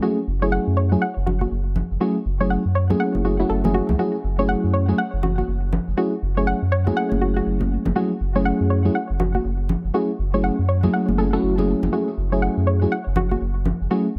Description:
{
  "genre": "deep house",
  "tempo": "121 BPM",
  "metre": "4/4",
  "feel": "swing 60% on 16ths",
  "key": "F# minor",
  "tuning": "A4 = 440 Hz",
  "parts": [
    { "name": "soft round pluck", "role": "arpeggios", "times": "0.0-14.0 s", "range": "F#3 to F#5", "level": "-29 LUFS", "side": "equal", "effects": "chorus, tape echo" },
    { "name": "mellow FM electric piano", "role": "stabs", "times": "0.0-14.1 s", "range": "F#3 to G#4", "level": "-25 LUFS", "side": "equal", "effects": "chorus, phaser, tape echo" },
    { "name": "warm sub bass", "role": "bass", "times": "0.3-14.2 s", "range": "F#1 to F#2", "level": "-24 LUFS", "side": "equal", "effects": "tube saturation" },
    { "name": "congas", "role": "percussion", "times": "1.3-13.8 s", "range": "none", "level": "-30 LUFS", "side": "equal", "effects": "none" }
  ],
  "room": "light reverb",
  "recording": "none",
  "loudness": "-21 LUFS",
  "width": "mono",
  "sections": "0.0-14.2 A section",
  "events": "none",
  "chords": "0.0 F#m9"
}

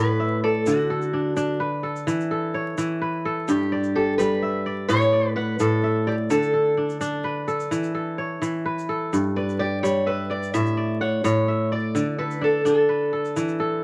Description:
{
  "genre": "west african traditional, West African string and xylophone music",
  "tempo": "85 BPM (dotted quarters)",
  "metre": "12/8",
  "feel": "straight",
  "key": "unclear",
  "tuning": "A4 = 440 Hz",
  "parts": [
    { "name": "fingerpicked steel-string acoustic guitar", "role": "melody", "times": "0.0-13.8 s", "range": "F#4 to E5", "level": "-26 LUFS", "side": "equal", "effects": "none" },
    { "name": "kora", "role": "arpeggios", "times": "0.0-13.8 s", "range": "G2 to F#5", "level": "-26 LUFS", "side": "equal", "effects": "none" },
    { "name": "tube shaker", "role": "percussion", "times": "0.7-13.5 s", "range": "none", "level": "-44 LUFS", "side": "equal", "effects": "none" }
  ],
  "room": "moderate studio ambience, RT60 0.5 s",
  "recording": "vinyl crackle",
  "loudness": "-23 LUFS",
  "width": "mono",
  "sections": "0.0-13.8 A section",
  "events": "none",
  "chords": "0.0 A5; 0.7 D; 2.1 E5; 3.5 G; 4.9 A; 6.3 D5; 7.7 E5; 9.1 G; 10.5 A; 12.0 D5"
}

